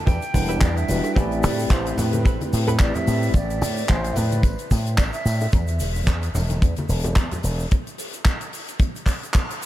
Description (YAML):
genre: nu-disco, nu disco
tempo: 110 BPM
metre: 4/4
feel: swing 56% on 16ths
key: A dorian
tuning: A4 = 440 Hz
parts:
  - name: reedy concert flute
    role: melody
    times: 0.0-5.5 s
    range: B4 to G5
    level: -31 LUFS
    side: right 1 dB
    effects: analog delay
  - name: direct-recorded clean electric guitar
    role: riff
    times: 0.1-3.1 s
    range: C4 to B4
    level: -33 LUFS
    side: right 3 dB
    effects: wide subtle chorus, analog delay
  - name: slap bass with an envelope filter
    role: bass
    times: 0.1-7.6 s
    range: E1 to A2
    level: -23 LUFS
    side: equal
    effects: none
  - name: kick drum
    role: drums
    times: 0.1-9.5 s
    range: none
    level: -19 LUFS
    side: equal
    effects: none
  - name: tight funk drum kit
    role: drums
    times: 0.1-9.7 s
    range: handclaps, hi-hat, shaker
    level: -30 LUFS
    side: equal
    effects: none
  - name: tambourine, bongos and congas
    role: percussion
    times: 0.1-7.7 s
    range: none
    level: -33 LUFS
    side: left 1 dB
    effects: none
  - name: bell-like tine electric piano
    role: accompaniment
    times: 0.3-3.3 s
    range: G3 to F#5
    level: -28 LUFS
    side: equal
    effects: medium stereo tremolo, sidechain pumping, analog delay
room: light reverb, small room ambience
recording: none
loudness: -19 LUFS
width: side -14 dB against mid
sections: 0.0-9.7 A section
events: band accent 9.3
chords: 0.0 Em7; 1.2 Am9; 5.5 N.C.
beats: 0.07 0.62 | 1.16 1.71 2.25 2.80 | 3.34 3.89 4.43 4.98 | 5.53 6.07 6.62 7.16 | 7.71 8.25 8.80 9.34